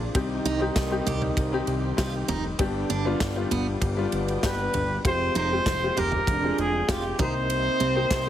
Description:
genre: piano-driven pop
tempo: 98 BPM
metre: 4/4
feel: straight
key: C minor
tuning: A4 = 439 Hz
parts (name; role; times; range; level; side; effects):
- clear upright piano; accompaniment; 0.0-8.3 s; G2 to Ab4; -29 LUFS; left 4 dB; none
- overdriven tonewheel organ; sustained chords; 0.0-8.3 s; C3 to G5; -38 LUFS; equal; chorus vibrato, slow rotary speaker
- fat analog bass; bass; 0.0-8.3 s; F1 to C2; -30 LUFS; equal; none
- warm French horn section; second line; 0.1-8.3 s; B2 to Eb4; -33 LUFS; right 5 dB; tape echo
- natural country drum kit; drums; 0.1-8.2 s; kick drum, ride cymbal, snare drum, toms; -30 LUFS; equal; none
- picked steel-string acoustic guitar; riff; 0.5-7.9 s; B3 to G4; -32 LUFS; right 6 dB; none
- warm trumpet; melody; 4.5-8.3 s; G4 to C5; -26 LUFS; left 1 dB; none
room: light reverb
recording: heavily compressed radio sound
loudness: -23 LUFS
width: side -11 dB against mid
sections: 0.0-8.3 A section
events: none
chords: 0.2 Cm; 2.6 G; 5.0 Fmadd9; 7.2 Cm7

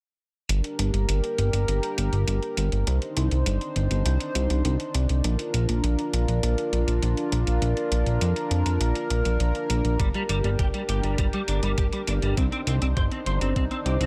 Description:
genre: synthwave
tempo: 101 BPM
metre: 4/4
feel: straight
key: unclear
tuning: A4 = 440 Hz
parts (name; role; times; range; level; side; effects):
- chorused pulse-width pad; sustained chords; 0.5-14.1 s; D4 to C5; -31 LUFS; equal; sidechain pumping
- fat analog bass; bass; 0.5-14.1 s; G1 to F2; -26 LUFS; equal; sidechain pumping
- electronic hi-hat; drums; 0.5-14.1 s; none; -36 LUFS; equal; none
- clean electric guitar; riff; 10.0-14.1 s; G3 to C5; -33 LUFS; equal; ensemble chorus, delay
- electronic kick drum; drums; 10.0-13.7 s; none; -28 LUFS; equal; none
room: light reverb, digital ambience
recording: dark, warm production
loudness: -25 LUFS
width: mono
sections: 0.5-14.1 A section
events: filter sweep on analog synth bass 0.5-14.1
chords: 0.5 Gm; 2.9 Cmadd9; 5.2 Bb; 10.0 Gm; 12.4 Cmadd9

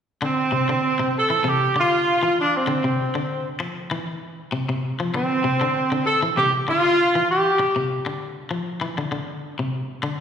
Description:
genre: afrobeat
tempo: 98 BPM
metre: 4/4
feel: swing 54% on 16ths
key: C major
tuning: A4 = 438 Hz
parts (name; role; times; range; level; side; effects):
- clear horn section; melody; 0.2-7.9 s; C4 to A4; -19 LUFS; right 1 dB; slapback echo
- twangy electric guitar; arpeggios; 0.2-10.2 s; C3 to F3; -26 LUFS; left 2 dB; slapback echo
room: moderate plate reverb, RT60 2.4 s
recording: live gig heard through the venue's PA, recital hall reverb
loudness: -19 LUFS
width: side -8 dB against mid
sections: 0.2-10.2 A section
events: none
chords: 0.2 Csus2; 2.7 Csus24; 3.9 Cadd11; 5.1 Csus2; 7.6 Csus24; 8.8 Csus2

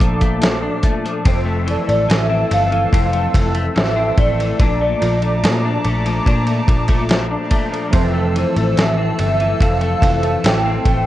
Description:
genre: indie pop, bedroom pop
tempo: 72 BPM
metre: 4/4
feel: straight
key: F major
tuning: A4 = 440 Hz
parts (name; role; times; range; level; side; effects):
- warbly nostalgic lead; melody; 0.0-11.1 s; C5 to G5; -21 LUFS; right 1 dB; ensemble chorus
- chorused retro synth keys; accompaniment; 0.0-1.3, 7.9-11.1 s; E3 to A4; -26 LUFS; right 4 dB; cassette tape
- clean electric guitar; accompaniment; 0.0-11.1 s; F2 to D4; -22 LUFS; left 4 dB; ensemble chorus, vibrato effect
- hollow soft pad; sustained chords; 0.0-11.1 s; A4 to E6; -25 LUFS; right 1 dB; chorus
- vintage muted picked electric bass; bass; 0.0-11.1 s; F1 to Bb2; -20 LUFS; equal; none
- dusty soul sampler-style drum kit; drums; 0.0-11.1 s; hi-hat, kick drum, ride cymbal, snare drum; -18 LUFS; equal; none
room: light reverb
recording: worn, warbling old tape, cassette tape, warbly pitch drift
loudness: -14 LUFS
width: side -14 dB against mid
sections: 0.0-1.3 A section; 1.3-11.1 A section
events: none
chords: 0.0 Bbmaj7; 1.3 Fmaj7; 4.6 Bbmaj7; 7.9 Fmaj7

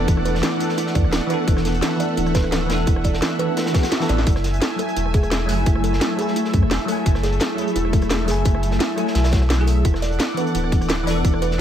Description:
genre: liquid drum and bass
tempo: 172 BPM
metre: 4/4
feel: straight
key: F# minor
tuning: A4 = 442 Hz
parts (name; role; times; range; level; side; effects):
- bell-like tine electric piano; accompaniment; 0.0-11.6 s; E3 to G#5; -24 LUFS; left 1 dB; phaser, tape echo
- lush unison pad; sustained chords; 0.0-11.6 s; A3 to G#5; -29 LUFS; equal; chorus, sidechain pumping
- kalimba; arpeggios; 0.0-11.6 s; E4 to D5; -26 LUFS; right 6 dB; ping-pong delay
- warm sub bass; bass; 0.0-11.6 s; D1 to F#2; -22 LUFS; equal; none
- crunchy breakbeat drum kit; drums; 0.1-11.6 s; hi-hat, snare drum; -31 LUFS; equal; high-pass filter on hats, high-pass filter on snare, high-pass filter on room
- drum and bass drum kit; drums; 0.1-11.5 s; hi-hat, rim click, snare drum; -26 LUFS; equal; none
- electronic kick drum; drums; 0.1-11.3 s; none; -18 LUFS; equal; none
- swell; sound effects; 3.7-4.3 s; none; -32 LUFS; left 5 dB; none
room: light reverb, digital ambience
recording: none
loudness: -17 LUFS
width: side -10 dB against mid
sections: 0.0-11.6 A section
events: swell 3.7-4.3; kick drops out 3.9-4.3; drum fill 4.1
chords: 0.0 E7sus4; 4.3 F#m9; 9.8 E7sus4

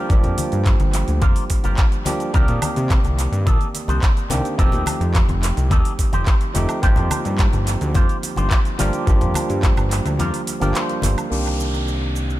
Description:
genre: nu-disco, nu disco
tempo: 107 BPM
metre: 4/4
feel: straight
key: G minor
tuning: A4 = 438 Hz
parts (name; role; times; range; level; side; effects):
- barky tine electric piano; accompaniment; 0.0-12.4 s; Eb3 to D5; -25 LUFS; right 1 dB; sidechain pumping, low-pass filter, tape echo
- electric guitar with an envelope filter; riff; 0.0-11.3 s; D4 to C5; -29 LUFS; right 1 dB; wide subtle chorus, tape echo
- fat analog bass; bass; 0.1-12.4 s; F1 to C3; -21 LUFS; equal; none
- electronic kick drum; drums; 0.1-9.7 s; none; -17 LUFS; equal; overdrive
- pop drum kit; drums; 0.1-12.4 s; handclaps, hi-hat, shaker, woodblock; -28 LUFS; right 2 dB; tape echo
- congas; percussion; 0.2-11.1 s; none; -29 LUFS; left 3 dB; tape echo
- downlifter; sound effects; 11.3-12.4 s; none; -28 LUFS; equal; none
room: little or no reverb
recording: echo-heavy mix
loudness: -16 LUFS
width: side -15 dB against mid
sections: 0.0-11.3 A section; 11.3-12.4 B section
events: break 10.2-11.3; clean electric guitar fill 10.5-11.3; filter sweep on tine electric piano 11.3-12.4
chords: 0.0 Gm7; 2.3 Cm9; 4.6 F9; 6.8 Eb69/G; 8.8 Gm7; 11.3 Cm9

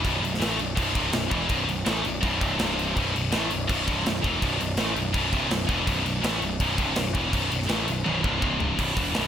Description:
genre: heavy metal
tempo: 164 BPM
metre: 4/4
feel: straight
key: unclear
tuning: A4 = 439 Hz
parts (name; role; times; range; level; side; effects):
- heavy high-gain guitar; riff; 0.0-9.3 s; B1 to A3; -25 LUFS; equal; distortion
- fuzz picked electric bass; bass; 0.0-9.3 s; B0 to A1; -30 LUFS; equal; overdrive
- tight metal drum kit; drums; 0.0-9.2 s; crash cymbal, hi-hat, kick drum, snare drum, toms; -28 LUFS; equal; none
room: little or no reverb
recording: none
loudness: -23 LUFS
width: side -9 dB against mid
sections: 0.0-8.8 A section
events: drum fill 8.1-8.8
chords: 0.0 B5; 2.6 C5; 3.0 B5; 8.4 C5

